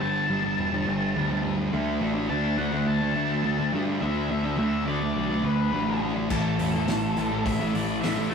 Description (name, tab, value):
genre	rock, shoegaze and dream pop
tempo	105 BPM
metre	4/4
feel	straight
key	unclear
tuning	A4 = 440 Hz
part	octave-fuzz lead guitar	melody	0.0-8.3 s	A4 to A5	-30 LUFS	left 2 dB	distortion
part	thick fuzz guitar	riff	0.0-8.3 s	G2 to D4	-25 LUFS	equal	distortion
part	growling picked electric bass	bass	0.0-8.3 s	E1 to G2	-32 LUFS	left 1 dB	overdrive
part	loose indie drum kit	drums	6.3-8.2 s	crash cymbal, hi-hat, kick drum, snare drum	-31 LUFS	equal	none
room	wet stone room reverb, RT60 1.1 s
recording	rough rehearsal-room recording, warm saturation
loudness	-23 LUFS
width	side -6 dB against mid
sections	0.0-8.3 A section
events	none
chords	0.0 Gsus2; 1.7 D5; 6.3 A5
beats	0.00 0.57 1.14 | 1.72 2.29 2.86 3.44 | 4.01 4.58 5.16 5.73 | 6.31 6.88 7.45 8.03